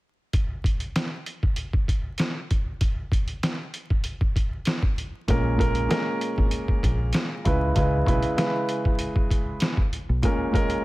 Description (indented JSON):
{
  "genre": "hip hop, boom-bap hip-hop",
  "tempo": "97 BPM",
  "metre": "4/4",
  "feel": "swing 54% on 16ths",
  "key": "unclear",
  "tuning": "A4 = 441 Hz",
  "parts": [
    { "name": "trip hop sampler-style drum kit", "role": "drums", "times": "0.3-10.8 s", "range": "hi-hat, kick drum, snare drum", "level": "-24 LUFS", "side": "equal", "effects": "none" },
    { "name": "dark baby grand piano", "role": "accompaniment", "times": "5.3-10.8 s", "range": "Bb2 to Cb5", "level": "-25 LUFS", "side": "right 1 dB", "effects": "high-pass filter, low-pass filter" },
    { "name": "deep dub fingered electric bass", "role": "bass", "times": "5.3-10.2 s", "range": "Ab1 to Db2", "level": "-24 LUFS", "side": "equal", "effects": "none" }
  ],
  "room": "digital ambience",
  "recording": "vinyl crackle",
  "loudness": "-22 LUFS",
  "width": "side -19 dB against mid",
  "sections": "0.3-5.3 A section; 5.3-10.8 B section",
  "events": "none",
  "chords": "0.3 N.C.; 5.3 Bbm7; 7.4 Dbm7; 10.2 Bbm7"
}